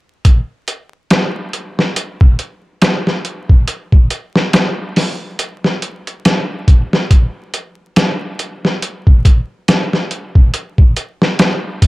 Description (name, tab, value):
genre	trip hop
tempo	70 BPM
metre	4/4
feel	swing 58% on 16ths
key	none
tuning	none
part	trip hop sampler-style drum kit	drums	0.2-11.9 s	hi-hat, kick drum, snare drum	-11 LUFS	equal	vintage 12-bit sampler grit
room	light reverb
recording	vinyl crackle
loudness	-12 LUFS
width	side -20 dB against mid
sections	0.3-11.9 A section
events	none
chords	none